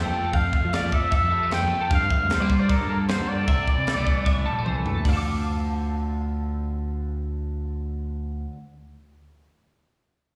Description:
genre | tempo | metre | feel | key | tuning
math rock and midwest emo | 153 BPM | 4/4 | straight | D minor | A4 = 440 Hz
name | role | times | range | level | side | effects
breathy trumpet | melody | 0.0-4.7 s | Bb4 to G5 | -28 LUFS | equal | slapback echo
twangy electric guitar | accompaniment | 0.0-8.6 s | D2 to A4 | -35 LUFS | equal | lush chorus, slapback echo
twelve-string electric guitar | arpeggios | 0.0-8.6 s | A4 to D6 | -36 LUFS | equal | ensemble chorus, slapback echo
overdriven picked electric bass | bass | 0.1-8.4 s | Bb1 to G3 | -29 LUFS | equal | none
crisp fusion drum kit | drums | 0.3-5.2 s | crash cymbal, hi-hat, kick drum, snare drum, toms | -28 LUFS | equal | none
room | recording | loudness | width
little or no reverb | live gig heard through the venue's PA, recital hall reverb, studio ambience | -24 LUFS | mono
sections
0.0-5.1 A section; 5.1-8.2 B section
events
drum fill 4.7-5.1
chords
0.0 Fmaj7; 1.9 Gm9; 3.5 C69; 5.1 Dm7

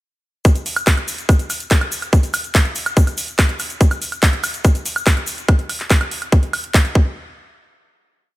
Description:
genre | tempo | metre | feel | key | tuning
trance | 143 BPM | 4/4 | straight | none | none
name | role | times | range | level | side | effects
techno drum kit | drums | 0.4-6.9 s | handclaps, hi-hat, woodblock | -21 LUFS | right 1 dB | studio reverb
electronic kick drum | drums | 0.5-7.0 s | none | -13 LUFS | equal | overdrive, studio reverb
cabasa | percussion | 0.5-5.5 s | none | -29 LUFS | left 3 dB | none
room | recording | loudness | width
digital ambience | none | -15 LUFS | side -18 dB against mid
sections
0.5-7.2 drop; 7.2-8.4 final hit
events
drop 0.5-7.2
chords
none

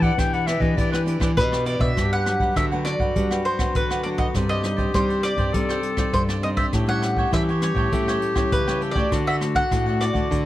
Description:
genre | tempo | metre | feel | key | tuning
samba and choro | 101 BPM | 4/4 | straight | G major | A4 = 440 Hz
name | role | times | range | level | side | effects
clear clarinet | second line | 0.0-10.5 s | F#4 to G5 | -27 LUFS | left 3 dB | none
cavaquinho | accompaniment | 0.0-10.4 s | D4 to G5 | -31 LUFS | right 4 dB | none
nylon-string guitar | accompaniment | 0.0-10.5 s | G2 to G4 | -30 LUFS | left 2 dB | none
nylon-string guitar | bass | 0.0-10.5 s | G2 to A3 | -25 LUFS | equal | none
jazz brush drum kit | drums | 0.0-10.4 s | hi-hat, kick drum, rim click | -26 LUFS | equal | none
mandolin | melody | 1.4-10.5 s | B4 to F#5 | -26 LUFS | equal | none
room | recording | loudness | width
little or no reverb | vinyl crackle | -19 LUFS | side -14 dB against mid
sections
0.0-2.0 A section; 2.0-10.5 B section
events
clarinet solo 0.0-2.0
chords
0.0 Em7; 2.0 Gmaj7; 4.3 Cmadd9/G; 6.7 A7; 9.1 D

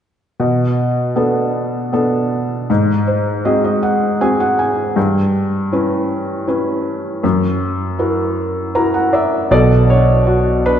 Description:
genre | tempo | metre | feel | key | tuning
folk | 79 BPM | 3/4 | straight | B minor | A4 = 440 Hz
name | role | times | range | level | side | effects
felt-muted upright piano | melody | 0.4-10.8 s | F#2 to A#5 | -14 LUFS | equal | none
fretless electric bass | bass | 9.5-10.8 s | B1 | -15 LUFS | right 1 dB | none
room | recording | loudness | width
wet scoring stage reverb, RT60 2.0 s | recorded in a church or concert hall, nothing above 10.7 kHz | -14 LUFS | side -9 dB against mid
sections
0.4-9.5 A section; 9.5-10.8 B section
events
felt piano fill 2.7-5.0, 8.4-9.5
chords
0.4 Bm7; 2.7 G#7; 5.0 C#m7b5/G; 7.2 F#7; 9.5 Bm7

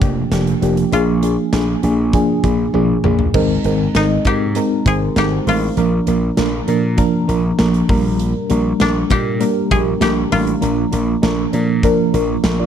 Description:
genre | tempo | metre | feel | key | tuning
1980s-style pop | 99 BPM | 4/4 | straight | unclear | A4 = 437 Hz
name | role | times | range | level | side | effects
koto | melody | 0.0-12.5 s | D4 to Bb4 | -22 LUFS | left 3 dB | tape echo
FM electric piano with auto-pan | accompaniment | 0.0-12.7 s | F3 to D5 | -16 LUFS | right 1 dB | phaser
gritty slap bass | bass | 0.0-12.7 s | F1 to Bb2 | -19 LUFS | equal | overdrive
big rock drum kit | drums | 0.0-12.6 s | crash cymbal, hi-hat, kick drum, snare drum, toms | -21 LUFS | equal | none
room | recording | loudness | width
little or no reverb | dry, close 1970s-style studio recording | -14 LUFS | side -8 dB against mid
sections
0.0-3.3 A section; 3.3-12.7 B section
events
drum fill 2.7-3.3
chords
0.0 Gm7/F; 0.9 Bb7; 3.3 Abadd9; 5.8 Bb; 7.9 Gm/Bb; 10.6 Bb

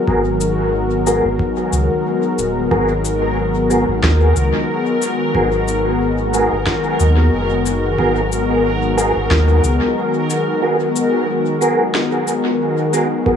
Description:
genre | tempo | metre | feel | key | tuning
ambient dub | 91 BPM | 4/4 | swing 55% on 16ths | G# minor | A4 = 438 Hz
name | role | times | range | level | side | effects
warm analog pad | sustained chords | 0.0-13.4 s | D#3 to A#4 | -18 LUFS | left 2 dB | chorus
bubbling stepped-filter texture | texture | 0.0-13.4 s | F#3 to A#4 | -24 LUFS | left 1 dB | chorus, built-in reverb
tonewheel organ | stabs | 0.1-13.4 s | B3 to A#4 | -20 LUFS | right 1 dB | chorus vibrato, slow rotary speaker, low-pass filter, dub echo
warm sub bass | bass | 0.1-13.4 s | D#1 to D#2 | -18 LUFS | equal | none
electronic kick drum | drums | 0.1-13.4 s | none | -24 LUFS | equal | overdrive
electronic cabasa and snare drum | drums | 0.4-13.1 s | none | -24 LUFS | left 1 dB | dub echo
room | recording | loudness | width
wet spring reverb, RT60 1.8 s | small room ambience | -14 LUFS | side -8 dB against mid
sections
0.0-13.4 A section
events
filter sweep on tonewheel organ 0.0-13.4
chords
0.0 G#m9

